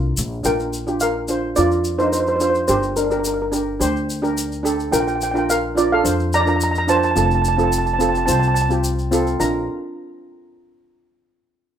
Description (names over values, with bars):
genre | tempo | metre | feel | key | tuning
calypso | 107 BPM | 4/4 | straight | Bb major | A4 = 439 Hz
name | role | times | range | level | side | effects
steel pan | melody | 0.0-9.7 s | D4 to Bb5 | -19 LUFS | right 2 dB | plate reverb
steel pan | accompaniment | 0.0-9.7 s | C4 to C5 | -22 LUFS | right 1 dB | plate reverb
upright bass | bass | 0.0-9.7 s | F1 to F2 | -24 LUFS | left 1 dB | none
tube shaker | percussion | 0.2-9.7 s | none | -29 LUFS | left 4 dB | none
room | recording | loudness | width
moderate studio reverb, RT60 0.6 s | rough home demo mix | -17 LUFS | side -9 dB against mid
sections
0.5-9.4 A section; 9.4-11.7 B section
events
none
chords
0.5 Bb; 2.7 Gm; 4.9 Bb; 7.2 F; 9.4 Bb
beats
| 0.45 1.01 1.57 2.13 | 2.69 3.25 3.81 4.37 | 4.93 5.49 6.05 6.61 | 7.17 7.73 8.29 8.85 | 9.41